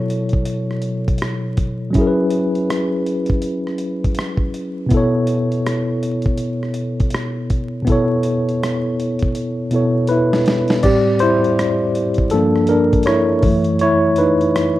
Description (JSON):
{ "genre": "lo-fi hip hop", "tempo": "81 BPM", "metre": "4/4", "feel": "swing 60% on 16ths", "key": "unclear", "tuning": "A4 = 441 Hz", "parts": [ { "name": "tine electric piano", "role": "accompaniment", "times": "0.0-14.8 s", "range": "F#2 to D5", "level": "-16 LUFS", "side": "equal", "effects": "medium stereo tremolo, cassette tape" }, { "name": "dusty soul sampler-style drum kit", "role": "drums", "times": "0.1-14.8 s", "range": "crash cymbal, hi-hat, kick drum, rim click, snare drum", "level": "-20 LUFS", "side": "equal", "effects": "none" } ], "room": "little or no reverb", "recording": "rough home demo mix, vinyl crackle", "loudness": "-15 LUFS", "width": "side -15 dB against mid", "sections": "0.0-10.8 A section; 10.8-14.8 B section", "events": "drum fill 9.4-10.8; tine electric piano solo 10.8-14.8", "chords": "0.0 B9sus4; 1.9 F#9sus4; 4.9 B9sus4; 10.8 Am7; 12.3 Gm7; 13.4 F#m7" }